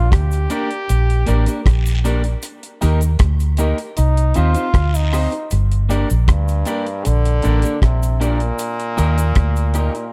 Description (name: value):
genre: roots reggae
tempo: 78 BPM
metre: 4/4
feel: straight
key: G minor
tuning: A4 = 440 Hz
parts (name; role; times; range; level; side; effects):
- brilliant trombone; melody; 0.0-10.1 s; G2 to G4; -26 LUFS; equal; tape echo
- vintage muted fingered electric bass; bass; 0.0-9.9 s; G1 to Eb2; -18 LUFS; equal; tube saturation
- deep reggae drum kit; drums; 0.1-10.1 s; hi-hat, kick drum, rim click; -21 LUFS; equal; none
- cabasa and guiro; percussion; 0.3-9.9 s; none; -37 LUFS; equal; none
- clean electric guitar; accompaniment; 0.5-9.9 s; Bb3 to C5; -29 LUFS; equal; spring reverb, tape echo
- clear baby grand piano; stabs; 0.5-10.0 s; D4 to Eb5; -32 LUFS; equal; none
room: studio ambience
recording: none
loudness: -17 LUFS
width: mono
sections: 0.0-5.5 A section; 5.5-10.1 B section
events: trombone solo 0.0-5.5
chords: 0.0 Gm; 2.4 Eb; 4.0 Cm; 5.5 Gm; 8.6 Eb